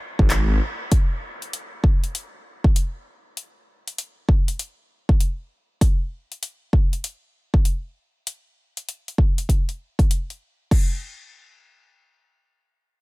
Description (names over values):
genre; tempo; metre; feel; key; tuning
glitch hop; 98 BPM; 4/4; swing 63% on 16ths; unclear; A4 = 440 Hz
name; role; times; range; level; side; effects
phased detuned saw bass; bass; 0.2-0.6 s; Ab1; -19 LUFS; equal; phaser, overdrive
electronic kick drum; drums; 0.2-10.9 s; none; -18 LUFS; equal; none
pop drum kit; drums; 0.3-10.9 s; crash cymbal, handclaps, hi-hat; -29 LUFS; left 2 dB; none
room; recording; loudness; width
little or no reverb; none; -20 LUFS; side -22 dB against mid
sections
0.0-10.7 A section; 10.7-13.0 B section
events
none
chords
none